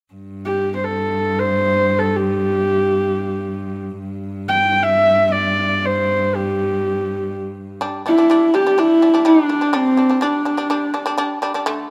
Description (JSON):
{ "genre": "mongolian traditional, Mongolian folk", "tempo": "free time", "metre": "none", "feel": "none", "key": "G zhi mode", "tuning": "A4 = 439 Hz", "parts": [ { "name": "clear cello", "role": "drone", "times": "0.1-7.9 s", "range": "G2", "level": "-26 LUFS", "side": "equal", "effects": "none" }, { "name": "warm horsehead fiddle", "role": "melody", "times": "0.5-11.2 s", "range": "C4 to G5", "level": "-18 LUFS", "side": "equal", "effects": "none" }, { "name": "shamisen", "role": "arpeggios", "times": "7.8-11.9 s", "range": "D3 to D4", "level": "-24 LUFS", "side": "equal", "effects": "none" } ], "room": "light reverb, small room ambience", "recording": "rough home demo mix", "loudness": "-18 LUFS", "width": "mono", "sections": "0.1-7.8 A section; 7.8-11.9 B section", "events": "none", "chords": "0.1 N.C.; 7.8 G5" }